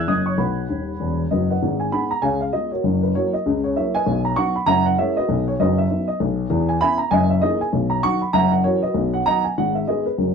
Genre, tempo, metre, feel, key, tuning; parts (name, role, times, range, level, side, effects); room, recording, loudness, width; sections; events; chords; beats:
jazz, stride piano; 196 BPM; 4/4; swing 61% on 8ths; B major; A4 = 440 Hz
dark upright piano; solo; 0.0-10.3 s; D#1 to D#6; -18 LUFS; equal
moderate studio reverb, RT60 0.6 s; -18 LUFS; side -6 dB against mid
0.0-1.6 A section; 1.6-10.3 B section
upright piano fill 0.7-1.6
0.1 F#; 0.4 B; 1.6 G#m7; 2.2 C#7; 2.8 F#7; 4.1 B; 4.7 F#9; 5.3 B; 6.5 E6; 7.1 F#13; 7.7 B; 8.3 F#7; 9.0 B; 9.6 G#m
0.09 | 0.39 0.70 1.00 1.31 | 1.62 1.92 2.23 2.54 | 2.84 3.15 3.46 3.76 | 4.07 4.37 4.68 4.99 | 5.29 5.60 5.90 6.21 | 6.51 6.82 7.12 7.43 | 7.74 8.04 8.35 8.65 | 8.96 9.26 9.57 9.87 | 10.18